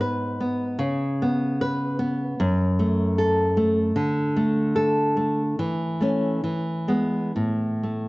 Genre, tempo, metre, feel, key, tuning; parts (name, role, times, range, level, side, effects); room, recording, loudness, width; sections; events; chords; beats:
romantic piece for solo classical guitar; 63-78 BPM; 4/4; rubato; A major; A4 = 439 Hz
nylon-string guitar; solo; 0.0-8.1 s; F#2 to B4; -21 LUFS; equal
moderate recital hall reverb, RT60 1.5 s; worn, warbling old tape, cassette tape, warbly pitch drift, nothing above 7.9 kHz; -21 LUFS; side -22 dB against mid
0.0-8.1 A section
0.0 G#m; 0.8 Bsus2/C#; 2.4 F#m; 3.9 D5; 5.6 A/E; 6.4 E; 7.3 A5
0.01 | 0.81 1.61 2.39 3.17 | 3.94 4.74 5.58 6.43 | 7.35